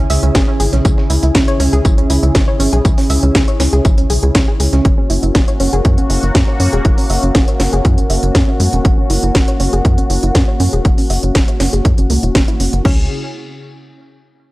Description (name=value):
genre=melodic techno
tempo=120 BPM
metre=4/4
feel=straight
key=C# dorian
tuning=A4 = 438 Hz
part: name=sweeping resonant pad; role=sustained chords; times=0.0-13.1 s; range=C#3 to G#4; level=-21 LUFS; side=left 1 dB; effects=chorus, sidechain pumping
part: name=soft round pluck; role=arpeggios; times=0.0-13.1 s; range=G#3 to E5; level=-21 LUFS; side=right 2 dB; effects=chorus, sidechain pumping, tape echo
part: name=tight sequencer bass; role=bass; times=0.0-13.1 s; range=E1 to F#2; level=-15 LUFS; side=equal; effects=sidechain pumping
part: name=dusty soul sampler-style drum kit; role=drums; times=0.1-4.8 s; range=hi-hat, snare drum, tambourine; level=-30 LUFS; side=left 1 dB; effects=overdrive, high-pass filter on snare, small room ambience, high-pass filter on perc, high-pass filter on hats
part: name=techno drum kit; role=drums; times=0.1-13.0 s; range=crash cymbal, hi-hat, snare drum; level=-19 LUFS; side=equal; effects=overdrive, small room ambience
part: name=electronic kick drum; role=drums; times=0.3-13.0 s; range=none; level=-13 LUFS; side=equal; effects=overdrive, small room ambience
room=digital ambience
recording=dry, gritty hardware recording, cassette tape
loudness=-11 LUFS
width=side -19 dB against mid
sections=0.0-12.8 A section; 12.8-14.5 B section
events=filter sweep on synth arpeggio sound 0.0-12.8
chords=0.0 C#m; 4.8 F#; 12.8 C#m